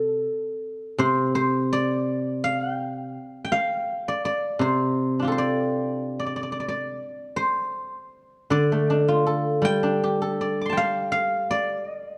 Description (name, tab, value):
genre	chinese traditional, Chinese solo plucked strings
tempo	73-84 BPM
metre	4/4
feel	rubato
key	D yu mode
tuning	A4 = 441 Hz
part	guzheng	solo	0.0-12.2 s	C3 to D6	-25 LUFS	equal	none
room	moderate recital hall reverb, RT60 1.8 s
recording	dark, warm production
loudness	-25 LUFS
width	mono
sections	0.0-7.0 A section; 7.0-12.2 B section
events	none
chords	none